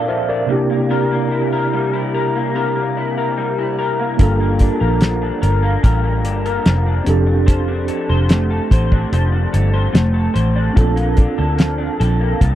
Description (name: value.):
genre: indie pop, bedroom pop.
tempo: 73 BPM.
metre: 4/4.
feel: straight.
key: F major.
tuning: A4 = 440 Hz.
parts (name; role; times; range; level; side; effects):
electric guitar through a small old amp; accompaniment; 0.0-12.6 s; G2 to C5; -20 LUFS; left 3 dB; analog chorus, warbly pitch drift.
mellow tine electric piano; accompaniment; 0.0-12.6 s; Bb2 to F5; -21 LUFS; right 3 dB; medium stereo tremolo, cassette tape.
vintage muted fingered electric bass; bass; 4.2-12.6 s; F1 to D2; -17 LUFS; equal; none.
cloth-damped thuddy drum kit; drums; 4.2-12.6 s; hi-hat, kick drum, snare drum; -13 LUFS; equal; none.
room: little or no reverb.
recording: dry, close 1970s-style studio recording.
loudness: -14 LUFS.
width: side -12 dB against mid.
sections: 0.0-12.6 A section.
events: none.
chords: 0.5 C7; 4.2 Gm7; 7.1 F6; 10.8 Bbmaj7.